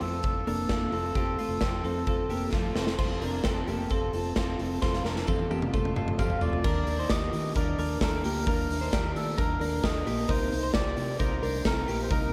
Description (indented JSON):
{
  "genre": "jangly indie pop",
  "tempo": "132 BPM",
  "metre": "4/4",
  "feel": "straight",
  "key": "unclear",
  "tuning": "A4 = 439 Hz",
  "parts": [
    { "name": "melodica", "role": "melody", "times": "0.0-2.5, 6.2-12.3 s", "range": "A4 to F5", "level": "-37 LUFS", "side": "equal", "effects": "slapback echo" },
    { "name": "picked twelve-string acoustic guitar", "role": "accompaniment", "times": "0.0-12.3 s", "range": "C3 to Bb4", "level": "-38 LUFS", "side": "equal", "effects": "slapback echo" },
    { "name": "twelve-string electric guitar", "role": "arpeggios", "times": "0.0-12.3 s", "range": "A3 to D6", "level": "-35 LUFS", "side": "equal", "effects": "slapback echo" },
    { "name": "vintage muted fingered electric bass", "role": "bass", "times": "0.0-12.3 s", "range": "F1 to Eb3", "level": "-36 LUFS", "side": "equal", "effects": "none" },
    { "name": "big rock drum kit", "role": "drums", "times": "0.0-12.2 s", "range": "crash cymbal, hi-hat, kick drum, snare drum, toms", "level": "-32 LUFS", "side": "equal", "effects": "none" },
    { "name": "tambourine", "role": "percussion", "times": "3.0-12.0 s", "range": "none", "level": "-56 LUFS", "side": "equal", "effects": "none" }
  ],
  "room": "moderate lush hall reverb, RT60 1.7 s, studio ambience",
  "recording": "big arena sound",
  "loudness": "-28 LUFS",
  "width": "mono",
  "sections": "0.0-3.0 A section; 3.0-6.6 B section; 6.6-12.3 C section",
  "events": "drum fill 2.5-3.0, 4.8-6.6",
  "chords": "0.0 Fadd9; 6.6 Ebmaj7"
}